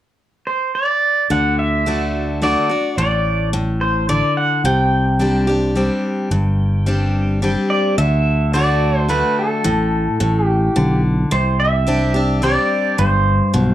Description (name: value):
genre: honky-tonk and classic country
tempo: 108 BPM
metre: 3/4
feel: straight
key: unclear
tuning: A4 = 439 Hz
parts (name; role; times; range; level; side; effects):
- pedal steel guitar; melody; 0.5-13.7 s; A4 to G5; -19 LUFS; right 1 dB; none
- picked steel-string acoustic guitar; accompaniment; 1.3-13.7 s; G2 to G4; -19 LUFS; left 1 dB; none
- fingered electric bass; bass; 1.3-13.7 s; G1 to D2; -18 LUFS; equal; none
room: moderate studio reverb, RT60 0.6 s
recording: home recording on cassette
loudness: -15 LUFS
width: side -12 dB against mid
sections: 0.0-1.3 A section; 1.3-8.0 B section; 8.0-13.7 C section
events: none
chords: 0.0 N.C.; 1.3 D; 4.6 Csus2; 8.0 D; 11.3 Csus2